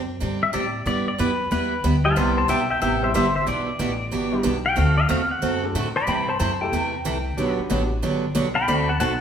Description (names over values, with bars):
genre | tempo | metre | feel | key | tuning
country, western swing | 184 BPM | 4/4 | swing 64% on 8ths | G major | A4 = 440 Hz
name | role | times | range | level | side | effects
upright bass | bass | 0.0-9.2 s | G1 to A2 | -25 LUFS | equal | none
picked acoustic archtop guitar | accompaniment | 0.2-9.1 s | B2 to A4 | -25 LUFS | right 4 dB | none
pedal steel guitar | second line | 0.4-9.2 s | B4 to B5 | -23 LUFS | left 2 dB | none
bright upright piano | accompaniment | 2.0-7.9 s | G3 to B4 | -30 LUFS | left 1 dB | none
room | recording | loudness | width
wet stone room reverb, RT60 1.4 s | band playing live in one room | -20 LUFS | side -8 dB against mid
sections
0.0-9.2 A section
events
pedal steel guitar solo 0.0-9.2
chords
0.0 D7sus4; 0.9 G6; 2.2 Cmaj7; 3.5 G6; 4.8 D7; 6.1 C6; 7.4 Gmaj7; 8.7 D7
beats
0.21 0.54 | 0.86 1.19 1.51 1.84 | 2.17 2.49 2.82 3.14 | 3.47 3.80 4.12 4.45 | 4.77 5.10 5.42 5.75 | 6.07 6.40 6.72 7.05 | 7.38 7.70 8.03 8.35 | 8.68 9.00